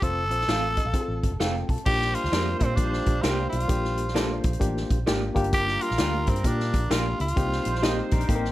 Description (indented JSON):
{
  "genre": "uptempo 1960s-style soul",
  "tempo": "131 BPM",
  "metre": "4/4",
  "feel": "swing 63% on 8ths",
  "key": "Bb major",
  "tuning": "A4 = 439 Hz",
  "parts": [
    { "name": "raspy tenor saxophone", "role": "melody", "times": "0.0-8.1 s", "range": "C4 to A4", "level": "-28 LUFS", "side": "equal", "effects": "none" },
    { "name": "barky reed electric piano", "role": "accompaniment", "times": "0.0-8.5 s", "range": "Bb3 to A5", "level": "-30 LUFS", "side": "left 3 dB", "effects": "overdrive, harmonic tremolo" },
    { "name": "vintage muted fingered electric bass", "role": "bass", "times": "0.0-8.5 s", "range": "F1 to Bb2", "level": "-29 LUFS", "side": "equal", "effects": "none" },
    { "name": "swinging big-band drum kit", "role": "drums", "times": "0.0-8.5 s", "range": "crash cymbal, hi-hat, kick drum, snare drum", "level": "-27 LUFS", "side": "equal", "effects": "none" },
    { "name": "electric guitar through a small old amp", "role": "stabs", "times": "0.5-8.0 s", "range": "F4 to F5", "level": "-33 LUFS", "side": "right 5 dB", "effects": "none" },
    { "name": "clear horn section", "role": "second line", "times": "1.9-8.5 s", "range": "G3 to C5", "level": "-35 LUFS", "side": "right 6 dB", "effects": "plate reverb" },
    { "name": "electric guitar through a small old amp", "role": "riff", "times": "8.1-8.5 s", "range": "Bb3 to Bb4", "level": "-32 LUFS", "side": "left 6 dB", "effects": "tremolo" }
  ],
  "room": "light reverb",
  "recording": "none",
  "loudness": "-22 LUFS",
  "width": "side -15 dB against mid",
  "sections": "0.0-1.9 A section; 1.9-8.5 B section",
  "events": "reed electric piano fill 0.5-1.9",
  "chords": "0.0 F; 1.9 Bb6; 5.3 Gm7; 7.4 Cm7"
}